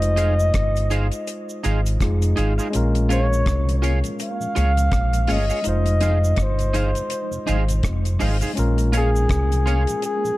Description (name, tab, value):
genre	lovers rock reggae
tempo	82 BPM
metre	4/4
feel	swing 59% on 16ths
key	Bb dorian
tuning	A4 = 440 Hz
part	breathy flugelhorn	melody	0.0-10.4 s	Ab4 to F5	-26 LUFS	equal	tape echo
part	overdriven tine electric piano	accompaniment	0.0-10.4 s	Ab3 to C5	-28 LUFS	left 2 dB	none
part	fingered electric bass	bass	0.0-9.8 s	F1 to Db2	-20 LUFS	equal	none
part	deep reggae drum kit	drums	0.0-10.2 s	hi-hat, kick drum, rim click	-26 LUFS	equal	none
part	cabasa	percussion	0.0-10.4 s	none	-39 LUFS	right 4 dB	none
part	electric guitar at the edge of break-up	stabs	0.2-9.8 s	Eb4 to F5	-29 LUFS	right 4 dB	analog chorus
part	mellow tonewheel organ	accompaniment	2.9-10.3 s	F2 to Eb4	-32 LUFS	left 3 dB	slow rotary speaker, tape echo
room	light reverb, studio ambience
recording	dark, warm production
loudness	-18 LUFS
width	side -18 dB against mid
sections	0.0-10.4 A section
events	none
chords	0.0 Fm7; 2.7 Bbm7; 5.7 Fm7; 8.6 Bbm7